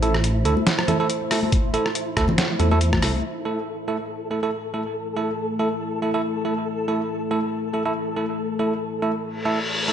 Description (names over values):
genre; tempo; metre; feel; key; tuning
deep dubstep; 140 BPM; 4/4; swing 56% on 16ths, half-time; A minor; A4 = 440 Hz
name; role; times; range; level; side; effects
deep dark ambient pad; sustained chords; 0.0-9.9 s; A3 to C5; -29 LUFS; left 1 dB; chorus, built-in reverb
bell-like tine electric piano; stabs; 0.0-9.9 s; A3 to A4; -25 LUFS; right 3 dB; dub echo
dark detuned saw bass; bass; 0.0-3.2 s; A1 to E2; -21 LUFS; equal; none
trip hop sampler-style drum kit; drums; 0.0-3.1 s; hi-hat, rim click, snare drum; -24 LUFS; equal; low-pass filter on hats, low-pass filter on snare
flickering grainy texture; texture; 0.0-9.9 s; E4 to A4; -32 LUFS; left 1 dB; built-in reverb
congas; percussion; 0.6-3.0 s; none; -27 LUFS; left 2 dB; dub echo
electronic kick drum; drums; 1.5-3.0 s; none; -24 LUFS; equal; none
reverse cymbal; sound effects; 9.4-9.9 s; none; -24 LUFS; left 2 dB; none
room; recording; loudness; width
moderate echo chamber reverb, RT60 1.6 s, digital ambience; nothing above 10.9 kHz; -21 LUFS; side -9 dB against mid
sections
0.0-3.2 A section; 3.2-9.9 B section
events
filter sweep on ambient pad 3.2-9.9; reverse cymbal 9.4-9.9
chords
0.0 A5